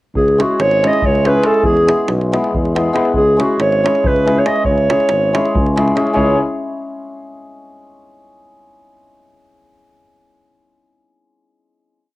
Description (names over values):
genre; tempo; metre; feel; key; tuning
balkan folk, Balkan wedding band; 279 BPM (eighths); 7/8; straight; C# minor; A4 = 441 Hz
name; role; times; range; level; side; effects
warm tuba; bass; 0.1-6.4 s; G#1 to E2; -18 LUFS; equal; none
mellow clarinet; melody; 0.2-6.4 s; F#4 to D#5; -14 LUFS; right 1 dB; none
davul; percussion; 0.2-6.4 s; none; -22 LUFS; right 1 dB; none
hammered dulcimer; accompaniment; 0.4-6.4 s; G#3 to G#4; -18 LUFS; left 2 dB; none
room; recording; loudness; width
moderate studio reverb, RT60 0.6 s; home recording on cassette; -12 LUFS; side -17 dB against mid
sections
0.2-6.2 A section; 6.2-7.7 final chord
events
none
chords
0.2 C#m; 1.6 E; 3.1 C#m